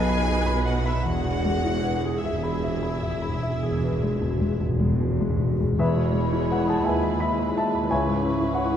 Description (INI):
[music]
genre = classical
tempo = 49-62 BPM (dotted quarters)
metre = 12/8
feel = rubato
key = E major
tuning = A4 = 441 Hz
[part]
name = warm baby grand piano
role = melody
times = 0.0-8.8 s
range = B1 to B5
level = -26 LUFS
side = left 2 dB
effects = none
[part]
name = warm studio violin section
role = melody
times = 0.0-8.8 s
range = E4 to C#5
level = -38 LUFS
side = left 4 dB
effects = none
[part]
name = rich studio violin section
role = second line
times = 0.0-8.8 s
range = G#4 to G#5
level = -34 LUFS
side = left 2 dB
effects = none
[part]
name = warm studio viola section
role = accompaniment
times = 0.0-8.8 s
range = E4 to B4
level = -36 LUFS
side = right 2 dB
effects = none
[part]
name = mellow tuba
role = bass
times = 0.0-5.7 s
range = E1 to B1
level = -33 LUFS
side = right 4 dB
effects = none
[part]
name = warm studio cello section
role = bass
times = 0.0-8.8 s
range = C#2 to B2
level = -33 LUFS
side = right 4 dB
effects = none
[part]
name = warm studio double bass section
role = bass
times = 0.0-8.8 s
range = E1 to D#2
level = -30 LUFS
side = right 3 dB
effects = none
[part]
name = timpani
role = percussion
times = 1.1-6.8 s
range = E2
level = -28 LUFS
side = left 1 dB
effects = none
[part]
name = hollow flute section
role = second line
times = 5.8-8.8 s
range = B5 to C#6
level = -34 LUFS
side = left 1 dB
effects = none
[part]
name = mellow bassoon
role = accompaniment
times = 5.8-8.8 s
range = E3 to G#3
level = -32 LUFS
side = right 3 dB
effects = none
[part]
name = dark French horn section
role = sustained chords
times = 5.8-8.8 s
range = G#3 to E4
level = -30 LUFS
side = left 5 dB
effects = none
[sound]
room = wet scoring stage reverb, RT60 1.7 s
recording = dark, warm production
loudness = -22 LUFS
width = side -9 dB against mid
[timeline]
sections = 0.0-5.8 A section; 5.8-8.8 B section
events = timpani fill 1.0-5.8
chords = 0.0 B7; 1.0 E; 7.9 C#m